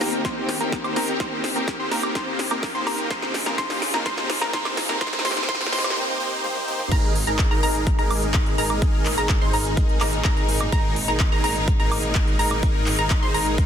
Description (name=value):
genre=EDM, festival progressive house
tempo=126 BPM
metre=4/4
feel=straight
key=Ab major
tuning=A4 = 441 Hz
part: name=rich studio string section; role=sustained chords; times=0.0-13.7 s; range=Bb2 to G4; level=-32 LUFS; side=left 1 dB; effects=sidechain pumping
part: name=wide unison pluck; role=arpeggios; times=0.0-13.7 s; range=Bb5 to C6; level=-28 LUFS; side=equal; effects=sidechain pumping, ping-pong delay
part: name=supersaw chords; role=riff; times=0.0-13.7 s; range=Bb3 to C5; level=-26 LUFS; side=equal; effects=sidechain pumping, ping-pong delay
part: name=detuned saw bass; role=bass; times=0.0-13.7 s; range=Ab1 to Eb2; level=-31 LUFS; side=equal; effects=sidechain pumping, high-pass filter
part: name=big-room dance drum kit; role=drums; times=0.0-13.7 s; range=crash cymbal, handclaps, hi-hat, snare drum, toms, woodblock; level=-27 LUFS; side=equal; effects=none
part: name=riser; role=sound effects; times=1.8-6.0 s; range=none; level=-33 LUFS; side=right 1 dB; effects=none
part: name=electronic kick drum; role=drums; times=0.2-13.7 s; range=none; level=-22 LUFS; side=equal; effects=none
room=light reverb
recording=dense, heavily limited modern master, high-pass filter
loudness=-20 LUFS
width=side -8 dB against mid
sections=0.0-6.9 A section; 6.9-13.7 B section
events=build-up 0.0-6.9; drum fill 0.0-6.0, 6.4-6.9; filter sweep on supersaw synth 0.0-6.9; filter sweep on synth pluck 0.0-6.9; riser 1.8-6.0; break 6.0-6.9; drop 6.9-13.7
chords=0.0 Eb6; 3.1 Db; 6.9 Absus2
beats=0.25 0.72 | 1.20 1.68 2.15 2.63 | 3.11 3.58 4.06 4.54 | 5.01 5.49 5.96 6.44 | 6.92 7.39 7.87 8.34 | 8.82 9.30 9.77 10.25 | 10.72 11.20 11.68 12.15 | 12.63 13.11 13.58